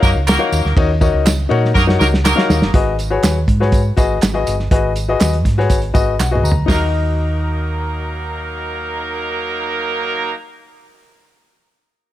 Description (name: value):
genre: uptempo 1960s-style soul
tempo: 122 BPM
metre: 4/4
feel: straight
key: Eb minor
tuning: A4 = 440 Hz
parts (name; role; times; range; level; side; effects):
- clear horn section; second line; 0.0-2.7, 6.7-10.3 s; Gb3 to Bb4; -21 LUFS; right 2 dB; none
- warm grand piano; accompaniment; 0.0-10.3 s; Eb4 to Bb5; -20 LUFS; left 5 dB; none
- hollow-body short-scale fingered electric bass; bass; 0.0-10.3 s; G1 to Bb2; -18 LUFS; right 1 dB; none
- warm soul drum kit; drums; 0.0-6.8 s; hi-hat, kick drum, ride cymbal, snare drum, toms; -17 LUFS; right 1 dB; none
- tambourine and handclaps; percussion; 0.0-6.9 s; none; -27 LUFS; right 6 dB; none
room: studio ambience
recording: none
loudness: -14 LUFS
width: side -13 dB against mid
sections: 0.0-2.7 A section; 2.7-6.7 B section; 6.7-10.6 C section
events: drum fill 1.8-2.7, 6.2-6.7; grand piano fill 5.7-6.7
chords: 0.0 Ebm7; 2.7 Abm7; 6.7 Ebm